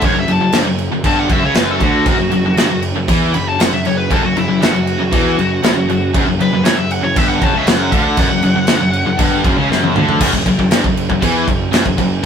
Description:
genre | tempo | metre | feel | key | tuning
heavy metal | 118 BPM | 4/4 | straight | unclear | A4 = 440 Hz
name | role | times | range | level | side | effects
smooth overdriven lead guitar | melody | 0.0-9.4 s | E4 to B5 | -19 LUFS | equal | none
heavy high-gain guitar | riff | 0.0-12.3 s | F#2 to E3 | -19 LUFS | left 6 dB | distortion
heavy high-gain guitar | riff | 0.0-12.2 s | F#2 to E3 | -21 LUFS | right 7 dB | distortion
tight distorted guitar | riff | 0.0-12.3 s | F#2 to E3 | -22 LUFS | right 1 dB | distortion
fuzz picked electric bass | bass | 0.0-12.2 s | F#1 to E2 | -21 LUFS | equal | overdrive
modern studio drum kit | drums | 0.0-12.1 s | crash cymbal, kick drum, snare drum, toms | -17 LUFS | equal | none
room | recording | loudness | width
moderate studio reverb, RT60 0.6 s | rough rehearsal-room recording | -12 LUFS | side -7 dB against mid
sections
0.0-10.2 A section; 10.2-12.3 B section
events
lead electric guitar solo 0.0-10.2; drum fill 9.7-10.2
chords
0.0 F#5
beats
| 0.03 0.54 1.05 1.56 | 2.07 2.58 3.08 3.60 | 4.10 4.61 5.12 5.63 | 6.14 6.65 7.16 7.67 | 8.18 8.69 9.19 9.70 | 10.21 10.72 11.22 11.73 | 12.24

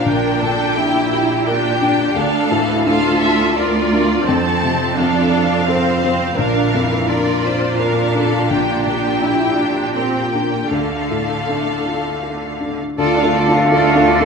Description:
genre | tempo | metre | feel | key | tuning
cinematic | 85 BPM | 3/4 | rubato | unclear | A4 = 440 Hz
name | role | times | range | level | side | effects
rich symphonic violin section | melody | 0.0-14.2 s | D5 to A5 | -23 LUFS | left 2 dB | none
clear symphonic violin section | second line | 0.0-14.2 s | F4 to C5 | -23 LUFS | left 3 dB | none
felt-muted upright piano | accompaniment | 0.0-14.2 s | Bb1 to Bb4 | -20 LUFS | left 2 dB | none
rich symphonic viola section | accompaniment | 0.0-14.2 s | E3 to F4 | -21 LUFS | right 4 dB | none
rich symphonic cello section | bass | 0.0-14.2 s | D2 to D3 | -21 LUFS | right 3 dB | none
clear oboe | second line | 13.0-14.2 s | A4 | -20 LUFS | right 2 dB | none
silver concert flute | second line | 13.0-14.2 s | F5 | -19 LUFS | right 1 dB | none
clear French horn section | sustained chords | 13.0-14.2 s | A3 to F4 | -21 LUFS | left 3 dB | none
rich symphonic double bass section | bass | 13.0-14.2 s | D2 | -22 LUFS | right 4 dB | none
room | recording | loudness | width
wet scoring stage reverb, RT60 1.7 s | minimal, uncompressed stereo recording | -14 LUFS | side -5 dB against mid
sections
0.0-13.0 A section; 13.0-14.2 B section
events
none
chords
0.1 Gm/Bb; 2.2 Dm; 4.3 F; 6.4 Bb; 8.5 Gm/Bb; 10.7 Dm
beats
| 0.06 0.77 1.47 | 2.17 2.87 3.58 | 4.28 4.98 5.68 | 6.38 7.08 7.79 | 8.50 9.22 9.96 | 10.71 11.47 12.23 | 12.98 13.71

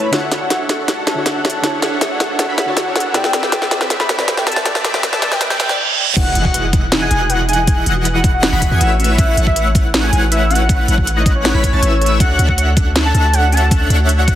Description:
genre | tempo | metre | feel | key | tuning
future bass | 159 BPM | 4/4 | half-time | unclear | A4 = 439 Hz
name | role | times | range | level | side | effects
warm velvety synth lead | melody | 0.0-14.3 s | C#5 to B5 | -20 LUFS | equal | chorus, tremolo, sidechain pumping, dub echo
soft round pluck | accompaniment | 0.0-5.8 s | C3 to D5 | -28 LUFS | left 2 dB | wide subtle chorus, sidechain pumping, dub echo
big bright polysynth | riff | 0.0-14.4 s | E3 to B5 | -21 LUFS | left 1 dB | ensemble chorus, sidechain pumping
riser, reverse cymbal and impact | sound effects | 1.0-7.7 s | none | -24 LUFS | right 3 dB | none
trap drum kit | drums | 0.1-14.4 s | crash cymbal, hi-hat, snare drum | -18 LUFS | equal | none
airy dreamy lead | arpeggios | 6.2-14.4 s | E6 to B6 | -24 LUFS | equal | chorus, sidechain pumping, dub echo
thumb-piano-like synth pluck | arpeggios | 6.2-14.3 s | C#4 to E5 | -29 LUFS | equal | chorus, vintage 12-bit sampler grit, sidechain pumping, dub echo
long sustained 808-style bass | bass | 6.2-14.4 s | E1 to E2 | -16 LUFS | equal | sidechain pumping
electronic kick drum | drums | 6.2-14.4 s | none | -15 LUFS | equal | overdrive
room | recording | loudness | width
moderate lush hall reverb, RT60 2.3 s | heavily compressed radio sound, high-pass filter | -12 LUFS | side -12 dB against mid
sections
0.0-6.2 A section; 6.2-14.4 B section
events
build-up 0.0-6.2; drum fill 0.0-5.8; filter sweep on analog polysynth 0.0-6.2; filter sweep on soft synth lead 0.0-6.2; filter sweep 0.0-6.2; reverse cymbal 5.4-6.2; drop 6.2-14.4; impact 6.2-7.7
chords
0.1 Dmaj7; 3.1 Cmaj7; 6.2 Emaj9; 9.0 A69; 12.2 Dmaj7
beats
| 0.13 0.51 0.88 1.26 | 1.64 2.01 2.39 2.77 | 3.15 3.52 3.90 4.28 | 4.66 5.03 5.41 5.79 | 6.17 6.54 6.92 7.30 | 7.67 8.05 8.43 8.81 | 9.18 9.56 9.94 10.32 | 10.69 11.07 11.45 11.82 | 12.20 12.58 12.96 13.34 | 13.71 14.09

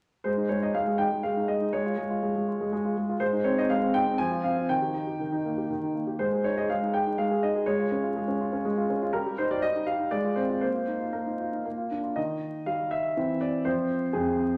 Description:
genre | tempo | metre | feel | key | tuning
classical-period piano sonatina | 121 BPM | 3/4 | rubato | Ab major, Eb major from 9.1 s | A4 = 439 Hz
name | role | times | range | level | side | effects
clear baby grand piano | solo | 0.2-14.6 s | F2 to Ab5 | -28 LUFS | equal | none
room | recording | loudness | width
wet recital hall reverb, RT60 1.4 s | vinyl crackle | -28 LUFS | mono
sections
0.2-12.2 A section; 12.2-14.6 B section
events
none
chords
0.2 Ab5; 1.7 Db/Ab; 3.2 Ab; 4.2 Fm; 4.7 Eb; 6.2 Ab5; 7.7 Db/Ab; 9.1 Eb/G; 10.1 Fm/Ab; 10.6 Bbsus4; 11.7 Bb; 12.2 Eb; 13.2 C/E; 13.7 Fm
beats
| 0.24 0.74 1.24 | 1.73 2.23 2.72 | 3.21 3.69 4.19 | 4.69 5.20 5.70 | 6.20 6.70 7.20 | 7.68 8.16 8.65 | 9.13 9.62 10.12 | 10.62 11.14 11.65 | 12.17 12.67 13.17 | 13.66 14.15

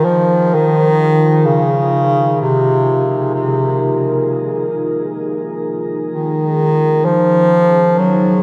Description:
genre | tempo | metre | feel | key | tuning
dark ambient drone | free time | none | none | F minor | A4 = 440 Hz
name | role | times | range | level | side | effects
warm bass clarinet | melody | 0.0-8.4 s | C3 to Gb3 | -15 LUFS | equal | diffuse ambient delay
deep dark ambient pad | sustained chords | 0.0-8.4 s | Db4 to C5 | -22 LUFS | equal | chorus, built-in reverb, shimmer reverb
room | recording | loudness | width
wet cathedral reverb, RT60 6.4 s | none | -15 LUFS | mono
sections
0.0-8.4 A section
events
fade-in on ambient pad 0.0-8.4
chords
0.0 Fm; 6.1 Ab5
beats
free time

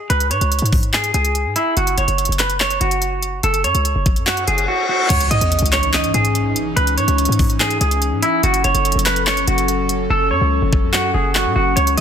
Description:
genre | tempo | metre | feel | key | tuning
hip hop, trap | 144 BPM | 4/4 | half-time | unclear | A4 = 440 Hz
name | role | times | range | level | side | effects
semi-hollow electric guitar | melody | 0.0-12.0 s | E4 to D#5 | -18 LUFS | right 2 dB | spring reverb, low-pass filter, digital delay
short 808-style bass | bass | 0.1-12.0 s | F#1 to A2 | -20 LUFS | equal | none
trap drum kit | drums | 0.1-12.0 s | crash cymbal, handclaps, hi-hat, kick drum | -20 LUFS | equal | none
reverse cymbal and impact | sound effects | 4.4-6.8 s | none | -25 LUFS | left 2 dB | none
airy breathy pad | sustained chords | 5.5-12.0 s | E3 to A4 | -23 LUFS | left 3 dB | chorus
room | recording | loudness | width
little or no reverb | dense, heavily limited modern master | -15 LUFS | side -8 dB against mid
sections
0.0-5.1 A section; 5.1-12.0 B section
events
reverse cymbal 4.4-5.1; impact 5.1-6.8; hi-hats muted 10.1-11.8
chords
0.0 C#5; 1.8 F#5; 5.1 C#madd9; 8.4 F#m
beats
| 0.10 0.52 0.93 1.35 | 1.77 2.18 2.60 3.02 | 3.43 3.85 4.27 4.68 | 5.10 5.52 5.93 6.35 | 6.77 7.18 7.60 8.02 | 8.43 8.85 9.27 9.68 | 10.10 10.52 10.93 11.35 | 11.77

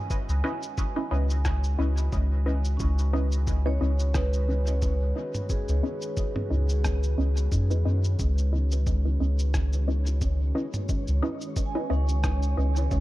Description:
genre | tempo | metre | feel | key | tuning
ambient dub | 89 BPM | 4/4 | swing 56% on 16ths | C# minor | A4 = 440 Hz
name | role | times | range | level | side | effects
warm analog pad | sustained chords | 0.0-13.0 s | D#3 to B4 | -39 LUFS | left 1 dB | wide subtle chorus
vibraphone with medium mallets | arpeggios | 0.0-13.0 s | C#4 to G#5 | -37 LUFS | right 2 dB | dub echo
electronic kick drum | drums | 0.1-13.0 s | none | -29 LUFS | equal | studio reverb
lo-fi sampler-style drum kit | drums | 0.1-13.0 s | rim click, shaker, toms | -36 LUFS | equal | studio reverb, dub echo
soft dub sub bass | bass | 0.3-13.0 s | C#2 to F#2 | -24 LUFS | equal | none
filtered dub chord stab | stabs | 0.4-12.7 s | C#4 to D#5 | -33 LUFS | equal | phaser, dub echo
wind-like tuned noise texture | texture | 9.1-13.0 s | C#4 to C#5 | -41 LUFS | right 4 dB | built-in reverb
room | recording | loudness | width
digital ambience | dark, warm production | -24 LUFS | side -16 dB against mid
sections
0.0-13.0 A section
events
fade-in on analog synth pad 0.0-13.0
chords
0.0 C#m9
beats
| 0.10 0.78 1.45 2.12 | 2.80 3.47 4.15 4.82 | 5.50 6.17 6.84 7.52 | 8.19 8.87 9.54 10.21 | 10.89 11.56 12.24 12.91

